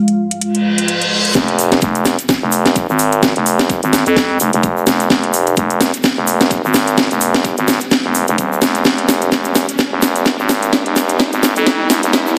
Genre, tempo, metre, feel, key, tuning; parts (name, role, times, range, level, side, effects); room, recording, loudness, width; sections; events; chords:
bass house; 128 BPM; 4/4; swing 57% on 16ths; F minor; A4 = 439 Hz
deep dark ambient pad; sustained chords; 0.0-12.4 s; Ab3 to Bb5; -21 LUFS; equal; chorus, built-in reverb, sidechain pumping
house drum kit; drums; 0.1-12.2 s; hi-hat, snare drum; -18 LUFS; equal
reverse cymbal and riser; sound effects; 0.6-12.4 s; -26 LUFS; equal
tube shaker; percussion; 1.3-12.3 s; -29 LUFS; equal
growling FM bass; bass; 1.4-12.4 s; Eb1 to F2; -18 LUFS; equal; sidechain pumping, high-pass filter
electronic kick drum; drums; 1.4-12.2 s; -23 LUFS; equal; high-pass filter on kick
wet lush hall reverb, RT60 1.9 s; dense, heavily limited modern master, high-pass filter; -14 LUFS; mono
0.0-1.4 A section; 1.4-12.4 B section
filter sweep on drum 0.0-1.4; reverse cymbal 0.6-1.4; build-up 1.4-12.4; drum fill 1.4-12.4
0.0 Fm; 1.4 Fmadd9